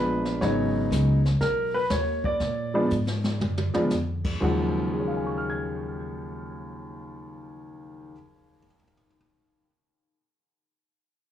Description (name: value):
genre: jazz piano trio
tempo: 120 BPM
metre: 4/4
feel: swing 67% on 8ths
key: Eb minor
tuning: A4 = 440 Hz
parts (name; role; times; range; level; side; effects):
- warm grand piano; melody; 0.0-9.2 s; Eb2 to Ab6; -27 LUFS; equal; analog delay
- upright bass; bass; 0.0-8.1 s; Ab1 to Bb2; -28 LUFS; equal; none
- jazz brush drum kit; drums; 0.3-4.3 s; brushed snare drum, crash cymbal, hi-hat, kick drum, snare drum, toms; -32 LUFS; left 1 dB; none
room: light reverb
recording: dry, gritty hardware recording, small room ambience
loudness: -23 LUFS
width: side -10 dB against mid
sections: 0.0-4.4 A section; 4.4-8.4 B section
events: drum fill 2.9-3.9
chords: 0.4 Abm7; 2.4 Bb7; 4.4 Ebm11